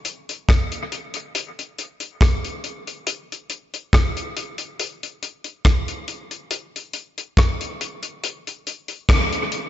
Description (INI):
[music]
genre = reggae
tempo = 70 BPM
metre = 4/4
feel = swing 55% on 16ths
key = none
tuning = none
[part]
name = damped 70s drum kit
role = drums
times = 0.0-9.7 s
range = hi-hat, kick drum, rim click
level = -20 LUFS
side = equal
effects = none
[sound]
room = moderate echo chamber reverb, RT60 2.4 s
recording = nothing above 7.7 kHz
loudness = -22 LUFS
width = side -12 dB against mid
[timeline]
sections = 0.0-9.7 A section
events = none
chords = none